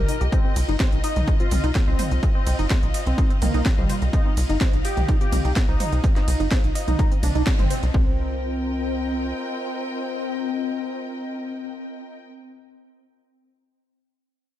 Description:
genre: melodic techno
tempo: 126 BPM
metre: 4/4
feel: straight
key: C minor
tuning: A4 = 440 Hz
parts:
  - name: wide unison lead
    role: melody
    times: 0.0-12.0 s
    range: G3 to Bb4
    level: -29 LUFS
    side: left 1 dB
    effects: wide subtle chorus, analog delay
  - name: tight sequenced synth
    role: arpeggios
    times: 0.0-8.2 s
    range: C4 to Eb5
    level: -31 LUFS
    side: equal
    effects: chorus, sidechain pumping, analog delay
  - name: tight sequencer bass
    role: bass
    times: 0.0-9.3 s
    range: G1 to C2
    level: -23 LUFS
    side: equal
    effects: tube saturation, sidechain pumping
  - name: warm studio string section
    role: texture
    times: 0.0-12.3 s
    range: F4 to G5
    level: -34 LUFS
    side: left 2 dB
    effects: sidechain pumping
  - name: techno drum kit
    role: drums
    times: 0.1-7.9 s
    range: hi-hat, ride cymbal, snare drum, toms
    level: -29 LUFS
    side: right 1 dB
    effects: none
  - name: electronic kick drum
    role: drums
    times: 0.3-8.0 s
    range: none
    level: -21 LUFS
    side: equal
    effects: none
room: digital ambience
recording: none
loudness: -20 LUFS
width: side -13 dB against mid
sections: 0.0-7.9 A section; 7.9-11.8 B section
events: drop 0.0-7.9; band accent 7.5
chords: 0.0 Cm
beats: | 0.32 0.80 1.28 1.75 | 2.23 2.71 3.18 3.66 | 4.13 4.61 5.09 5.56 | 6.04 6.51 6.99 7.47 | 7.94 8.42 8.90 9.37 | 9.85 10.32 10.80 11.28

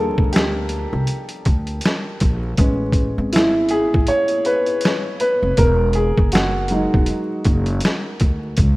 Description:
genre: lo-fi hip hop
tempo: 80 BPM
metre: 4/4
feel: swing 58% on 16ths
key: unclear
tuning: A4 = 440 Hz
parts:
  - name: dark upright piano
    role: accompaniment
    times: 0.0-8.6 s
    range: F3 to C#5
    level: -20 LUFS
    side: equal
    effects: cassette tape
  - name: upright bass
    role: bass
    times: 0.0-8.8 s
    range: E1 to Eb2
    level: -21 LUFS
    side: equal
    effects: none
  - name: trip hop sampler-style drum kit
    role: drums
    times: 0.2-8.8 s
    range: hi-hat, kick drum, snare drum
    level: -18 LUFS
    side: equal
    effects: none
room: light reverb, small room ambience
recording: rough home demo mix, vinyl crackle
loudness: -16 LUFS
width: side -20 dB against mid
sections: 0.0-8.8 A section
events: upright piano solo 0.0-8.8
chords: 0.0 Ebmaj9 (rootless); 2.6 Amaj9; 5.6 Emaj9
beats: 0.33 1.08 1.83 | 2.58 3.33 4.08 4.83 | 5.58 6.33 7.08 7.83 | 8.58

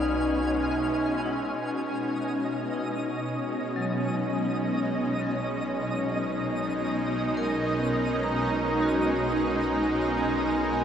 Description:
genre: ambient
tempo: free time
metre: none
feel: none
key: B lydian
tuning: A4 = 440 Hz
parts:
  - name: pedal steel guitar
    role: melody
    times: 0.0-0.5 s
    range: none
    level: barely audible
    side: none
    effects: none
  - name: shimmering ambient pad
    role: sustained chords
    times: 0.0-10.8 s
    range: B2 to D#4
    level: -27 LUFS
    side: equal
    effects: chorus, built-in reverb, shimmer reverb
  - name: vibraphone with hard mallets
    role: arpeggios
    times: 0.0-10.8 s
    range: F#3 to A#5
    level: -30 LUFS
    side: equal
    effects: shimmer reverb, diffuse ambient delay
  - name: deep rumbling drone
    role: bass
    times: 0.0-10.8 s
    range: B1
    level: -40 LUFS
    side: equal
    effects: built-in reverb
  - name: twinkling granular texture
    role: texture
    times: 0.0-10.8 s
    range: D#5 to E#6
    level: -35 LUFS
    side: right 1 dB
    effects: built-in reverb, shimmer reverb
  - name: organ-like drone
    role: drone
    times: 5.9-10.8 s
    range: B3 to A#4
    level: -45 LUFS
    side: left 1 dB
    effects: none
room: wet huge ambient reverb, RT60 8.5 s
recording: none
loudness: -25 LUFS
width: side -8 dB against mid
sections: 0.0-1.6 A section; 1.6-10.8 B section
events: fade-in on synth drone 1.6-10.8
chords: 0.0 B6; 1.6 Bmaj9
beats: free time

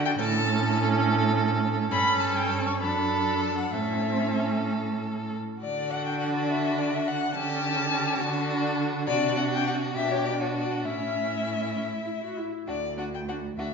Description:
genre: quick classical-period movement for string quartet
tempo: 63-71 BPM (dotted quarters)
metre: 6/8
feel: rubato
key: D major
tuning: A4 = 440 Hz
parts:
  - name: clear violin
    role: second line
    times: 0.0-13.7 s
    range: E4 to A4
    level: -32 LUFS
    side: right 1 dB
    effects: none
  - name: rich viola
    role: accompaniment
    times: 0.0-13.7 s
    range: C#4 to F#4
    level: -30 LUFS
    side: right 1 dB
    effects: none
  - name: rich cello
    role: bass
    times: 0.0-13.7 s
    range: D2 to D3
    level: -30 LUFS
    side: right 3 dB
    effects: none
  - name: warm violin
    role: melody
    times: 0.1-13.7 s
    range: C#5 to C#6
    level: -29 LUFS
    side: left 4 dB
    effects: none
room: wet recital hall reverb, RT60 1.3 s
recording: heard from further back in the room, nothing above 7.6 kHz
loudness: -24 LUFS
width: side -5 dB against mid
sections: 0.0-5.6 A section; 5.6-13.7 B section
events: none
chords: 0.2 A; 1.9 A7/G; 2.8 D/F#; 3.7 A; 5.6 D; 7.4 A7/D; 8.2 D; 9.1 D7/C; 9.9 G/B; 10.8 A; 12.7 D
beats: | 0.19 1.06 | 1.92 2.81 | 3.74 4.68 | 5.61 6.49 | 7.36 8.21 | 9.07 9.95 | 10.84 11.76 | 12.67 13.58

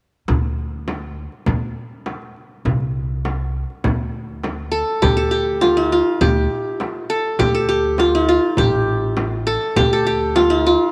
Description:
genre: Arabic maqam ensemble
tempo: 101 BPM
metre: 4/4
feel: straight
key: D maqam bayati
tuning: A4 = 442 Hz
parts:
  - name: upright bass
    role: bass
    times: 0.3-10.7 s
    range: A1 to D2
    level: -26 LUFS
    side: equal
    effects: none
  - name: darbuka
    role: percussion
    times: 0.3-10.5 s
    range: none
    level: -29 LUFS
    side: equal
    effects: none
  - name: frame drum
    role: percussion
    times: 0.3-10.5 s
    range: none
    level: -28 LUFS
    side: equal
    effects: none
  - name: qanun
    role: melody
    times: 4.7-10.9 s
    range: E4-50c to A4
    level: -18 LUFS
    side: equal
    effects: none
room: moderate plate reverb, RT60 3.2 s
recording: none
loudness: -19 LUFS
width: mono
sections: 0.3-5.0 A section; 5.0-10.9 B section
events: none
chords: none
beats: | 0.29 0.88 1.47 2.06 | 2.65 3.25 3.84 4.43 | 5.02 5.61 6.21 6.80 | 7.39 7.98 8.57 9.17 | 9.76 10.35

